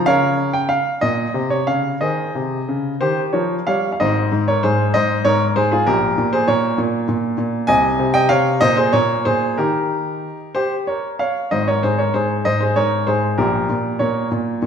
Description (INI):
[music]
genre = classical-period piano sonatina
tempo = 59-67 BPM (dotted quarters)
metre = 6/8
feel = rubato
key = Ab major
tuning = A4 = 440 Hz
[part]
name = clear baby grand piano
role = solo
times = 0.0-14.7 s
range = Ab1 to Ab5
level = -16 LUFS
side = equal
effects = none
[sound]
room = wet recital hall reverb, RT60 1.4 s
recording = heard from further back in the room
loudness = -16 LUFS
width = side -7 dB against mid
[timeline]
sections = 0.0-4.0 A section; 4.0-14.7 B section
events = none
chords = 0.1 Bbm/Db; 2.0 Ab; 3.0 Eb; 4.0 Ab; 5.9 Bbm6; 7.7 Ab/C; 8.6 Bbm11; 9.6 Eb; 11.5 Ab; 13.4 Bbm6